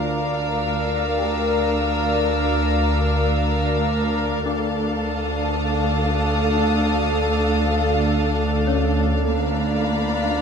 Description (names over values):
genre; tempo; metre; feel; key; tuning
cinematic, suspense film score; free time; none; none; D harmonic minor; A4 = 440 Hz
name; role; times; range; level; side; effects
warm studio violin section; melody; 0.0-10.4 s; F5; -28 LUFS; left 3 dB; none
warm studio viola section; accompaniment; 0.0-10.4 s; Bb3 to Bb4; -25 LUFS; left 1 dB; none
glassy FM pad; sustained chords; 0.0-10.4 s; F4 to F5; -27 LUFS; left 1 dB; ensemble chorus, built-in reverb
warm studio cello section; bass; 0.0-10.4 s; D2; -26 LUFS; right 2 dB; none
warm symphonic double bass section; bass; 0.0-10.4 s; D2; -28 LUFS; right 3 dB; none
organ-like drone; drone; 0.0-10.4 s; D2; -26 LUFS; equal; ensemble chorus, built-in reverb
dark studio violin section; texture; 0.0-10.4 s; A5 to E6; -32 LUFS; left 3 dB; none
worn celesta; texture; 1.2-10.4 s; C#4 to D6; -32 LUFS; left 7 dB; none
room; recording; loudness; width
wet scoring stage reverb, RT60 1.8 s; minimal, uncompressed stereo recording; -18 LUFS; side -6 dB against mid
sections
0.0-10.4 A section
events
none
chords
0.0 Bb/D; 4.5 Dm; 9.3 Bb/D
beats
free time